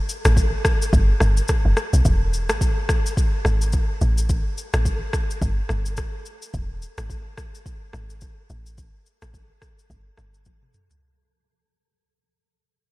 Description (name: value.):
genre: afrobeats.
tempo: 107 BPM.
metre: 4/4.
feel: swing 58% on 16ths.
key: unclear.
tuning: A4 = 441 Hz.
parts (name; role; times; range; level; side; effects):
afro-pop drum kit; drums; 0.1-11.0 s; kick drum, rim click, shaker, toms; -22 LUFS; equal; none.
deep log drum bass; bass; 0.3-10.5 s; E1 to B1; -20 LUFS; equal; none.
room: digital ambience.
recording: none.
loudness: -18 LUFS.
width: side -20 dB against mid.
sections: 0.0-11.0 A section.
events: fade-out 0.0-11.0; drum fill 10.5-11.0.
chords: none.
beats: 0.37 0.93 1.49 | 2.05 2.61 3.17 3.73 | 4.29 4.86 5.42 5.98 | 6.54 7.10 7.66 8.22 | 8.78 9.34 9.90 10.46.